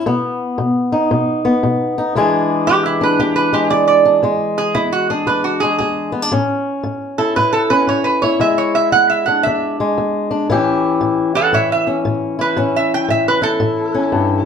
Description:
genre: acoustic country blues, solo or duo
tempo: 115 BPM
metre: 4/4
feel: swing 64% on 8ths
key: E mixolydian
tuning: A4 = 441 Hz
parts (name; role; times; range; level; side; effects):
- fingerpicked swing-style acoustic guitar; accompaniment; 0.0-14.5 s; E2 to G#4; -16 LUFS; left 2 dB; none
- lap resonator guitar; melody; 2.7-14.4 s; E4 to G5; -15 LUFS; right 4 dB; none
room: moderate large studio reverb, RT60 0.8 s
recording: band playing live in one room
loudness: -14 LUFS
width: side -7 dB against mid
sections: 0.0-2.1 A section; 2.1-14.5 B section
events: resonator guitar played with a steel bar solo 2.1-14.5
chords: 0.1 B; 2.1 E7; 6.3 A; 8.4 E7; 10.5 A7

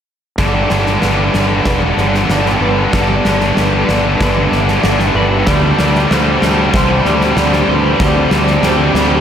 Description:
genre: post-rock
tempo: 95 BPM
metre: 4/4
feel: straight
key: G major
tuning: A4 = 438 Hz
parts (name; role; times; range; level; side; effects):
- shimmering ambient pad; sustained chords; 1.4-9.2 s; B3 to E5; -23 LUFS; equal; chorus, built-in reverb
- semi-hollow electric guitar; arpeggios; 0.4-9.2 s; D3 to C5; -21 LUFS; left 1 dB; none
- vibraphone with medium hard mallets; arpeggios; 0.4-9.2 s; B4 to D5; -23 LUFS; right 1 dB; tape echo
- tight distorted guitar; riff; 0.4-9.2 s; G2 to G3; -15 LUFS; equal; distortion
- fuzz fingered electric bass; bass; 0.4-9.2 s; E1 to D2; -17 LUFS; equal; overdrive
- huge arena drum kit; drums; 0.4-9.1 s; kick drum, snare drum; -17 LUFS; equal; none
room: moderate plate reverb, RT60 1.4 s, small room ambience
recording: dreamy mix soaked in reverb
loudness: -11 LUFS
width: side -8 dB against mid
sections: 0.4-9.2 A section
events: build-up 0.4-9.2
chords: 0.4 G; 5.5 D7sus4

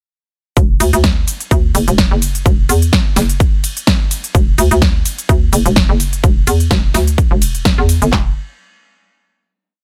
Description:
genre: bass house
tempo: 127 BPM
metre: 4/4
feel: swing 55% on 16ths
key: unclear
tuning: A4 = 440 Hz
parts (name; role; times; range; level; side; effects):
- hollow knocking FM bass; bass; 0.6-8.3 s; E1 to E2; -16 LUFS; equal; overdrive, sidechain pumping
- big-room dance drum kit; drums; 0.6-8.2 s; handclaps, kick drum, snare drum; -16 LUFS; equal; overdrive
- big-room dance drum kit; drums; 0.6-8.1 s; hi-hat, ride cymbal, shaker, snare drum; -20 LUFS; equal; overdrive
room: digital ambience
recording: none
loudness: -13 LUFS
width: mono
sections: 0.6-8.1 drop; 8.1-9.8 final chord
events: drop 0.6-8.1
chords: none

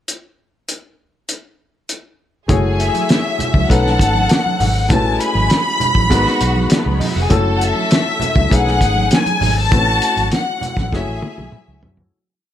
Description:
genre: lush 1970s-style soul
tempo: 100 BPM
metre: 4/4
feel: straight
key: F# dorian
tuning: A4 = 441 Hz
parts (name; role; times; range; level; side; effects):
- cloth-damped thuddy drum kit; drums; 0.1-12.1 s; hi-hat, kick drum, snare drum, toms; -17 LUFS; equal; none
- warm studio string section; second line; 2.5-11.8 s; G#3 to A5; -25 LUFS; left 2 dB; none
- warm concert grand piano; accompaniment; 2.5-12.1 s; G#3 to C#5; -21 LUFS; left 2 dB; none
- vintage muted fingered electric bass; bass; 2.5-12.1 s; E#1 to F#2; -19 LUFS; equal; none
- congas; percussion; 2.5-12.0 s; none; -26 LUFS; right 5 dB; none
- rich studio violin section; melody; 2.8-11.8 s; E5 to B5; -19 LUFS; left 2 dB; none
room: small room ambience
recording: none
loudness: -13 LUFS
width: side -11 dB against mid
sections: 0.1-2.5 pickup bar; 2.5-12.1 A section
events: fade-out 9.7-12.1; drum fill 10.9-12.1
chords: 0.1 N.C.; 2.5 F#m9; 3.7 B13; 4.9 A69; 6.1 G#m7; 7.3 F#m7; 8.5 B13; 9.7 A69; 10.9 F#m9

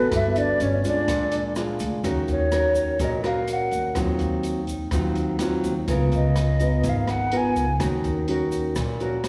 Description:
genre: bossa nova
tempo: 125 BPM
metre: 4/4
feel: straight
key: Eb minor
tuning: A4 = 441 Hz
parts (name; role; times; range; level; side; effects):
- mellow hollow jazz flute; melody; 0.0-7.8 s; B4 to Ab5; -28 LUFS; equal; slapback echo
- mellow alto flute; second line; 0.0-1.5 s; B3 to E4; -31 LUFS; equal; slapback echo
- nylon-string guitar; accompaniment; 0.0-9.3 s; Ab2 to Bb4; -28 LUFS; equal; slapback echo
- upright bass; bass; 0.1-9.3 s; G1 to Eb2; -29 LUFS; equal; none
- open jazz drum kit; drums; 0.1-9.3 s; hi-hat, kick drum, rim click; -34 LUFS; equal; none
- tube shaker; percussion; 0.1-9.3 s; none; -48 LUFS; equal; none
room: light reverb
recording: live gig heard through the venue's PA, recital hall reverb, small room ambience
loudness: -23 LUFS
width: mono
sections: 0.0-2.0 A section; 2.0-9.3 B section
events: flute solo 2.0-9.3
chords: 0.1 Gmaj9; 1.1 A#7; 2.0 Ebm7; 4.0 Ebm69; 5.9 Db13; 7.8 Ebm7

